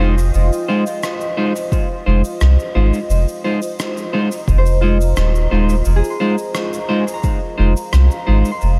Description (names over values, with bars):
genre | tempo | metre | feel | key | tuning
ambient dub | 87 BPM | 4/4 | straight | F minor | A4 = 439 Hz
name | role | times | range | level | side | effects
deep dark ambient pad | sustained chords | 0.0-8.8 s | F4 to Bb5 | -27 LUFS | equal | chorus, built-in reverb
clean electric guitar | stabs | 0.0-8.5 s | Ab3 to C5 | -23 LUFS | equal | dub echo
soft dub sub bass | bass | 0.0-8.8 s | Eb1 to C2 | -15 LUFS | equal | none
cabasa and rim click | drums | 0.2-8.8 s | none | -32 LUFS | equal | dub echo
electronic kick drum | drums | 1.7-7.4 s | none | -21 LUFS | equal | none
concert harp | arpeggios | 4.6-8.8 s | F4 to C6 | -28 LUFS | equal | dub echo
room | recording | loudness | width
small room reverb | dark, warm production | -17 LUFS | mono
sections
0.0-8.8 A section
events
none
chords
0.0 Fm7